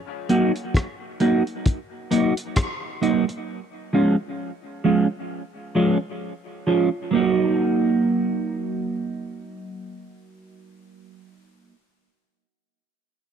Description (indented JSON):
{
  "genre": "dub reggae",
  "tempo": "66 BPM",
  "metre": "4/4",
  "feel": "swing 58% on 16ths",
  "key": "Eb minor",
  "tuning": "A4 = 444 Hz",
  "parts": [
    { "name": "mellow electric guitar", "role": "accompaniment", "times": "0.3-11.8 s", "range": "F3 to Gb4", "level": "-21 LUFS", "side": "right 2 dB", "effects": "phaser, dub echo" },
    { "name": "cloth-damped thuddy drum kit", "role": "drums", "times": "0.3-3.5 s", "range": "hi-hat, kick drum, rim click", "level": "-23 LUFS", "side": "left 1 dB", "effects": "none" }
  ],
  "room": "small room reverb",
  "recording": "dry, close 1970s-style studio recording",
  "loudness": "-20 LUFS",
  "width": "side -8 dB against mid",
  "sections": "0.0-7.1 A section; 7.1-10.8 B section",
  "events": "none",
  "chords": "0.0 Ebm; 3.5 Db; 7.1 Ebm"
}